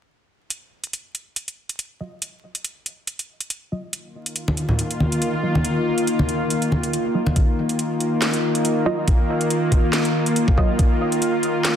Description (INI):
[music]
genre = deep dubstep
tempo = 140 BPM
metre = 4/4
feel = swing 55% on 16ths, half-time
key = Eb minor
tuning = A4 = 440 Hz
[part]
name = garage drum kit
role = drums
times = 0.5-11.7 s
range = hi-hat, snare drum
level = -25 LUFS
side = right 1 dB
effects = high-pass filter on hats, studio reverb, high-pass filter on snare
[part]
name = filtered dub chord stab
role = stabs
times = 2.0-10.7 s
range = Gb3 to Eb5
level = -27 LUFS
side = right 2 dB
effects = chorus, dub echo
[part]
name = bowed-like drone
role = sustained chords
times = 4.3-11.8 s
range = Eb3 to F4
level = -21 LUFS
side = left 1 dB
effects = built-in reverb
[part]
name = congas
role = percussion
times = 4.5-7.3 s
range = none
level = -23 LUFS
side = equal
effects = dub echo
[part]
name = electronic kick drum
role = drums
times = 7.4-10.9 s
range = none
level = -17 LUFS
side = equal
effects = studio reverb
[sound]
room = moderate digital room reverb, RT60 1.3 s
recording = dense, heavily limited modern master, vinyl crackle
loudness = -19 LUFS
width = side -9 dB against mid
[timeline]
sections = 0.5-7.4 A section; 7.4-11.8 B section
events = build-up 7.4-11.8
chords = 0.5 Ebmadd9; 7.4 Ebsus2